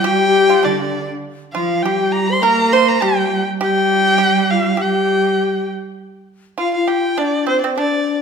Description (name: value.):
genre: chinese traditional, Chinese chamber ensemble.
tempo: 102 BPM.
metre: 2/4.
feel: rubato.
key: G yu mode.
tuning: A4 = 435 Hz.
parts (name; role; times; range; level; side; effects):
rich erhu; melody; 0.0-8.2 s; C5 to C6; -18 LUFS; left 1 dB; none.
clear cello; second line; 0.0-5.7 s; D3 to Bb3; -21 LUFS; right 7 dB; none.
mellow low xiao; second line; 0.0-8.2 s; D4 to C5; -19 LUFS; left 5 dB; none.
pipa; second line; 0.0-8.2 s; C4 to C5; -21 LUFS; right 6 dB; none.
room: wet recital hall reverb, RT60 1.5 s.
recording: minimal, uncompressed stereo recording.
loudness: -14 LUFS.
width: side -6 dB against mid.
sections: 0.0-6.0 A section; 6.0-8.2 B section.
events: none.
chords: none.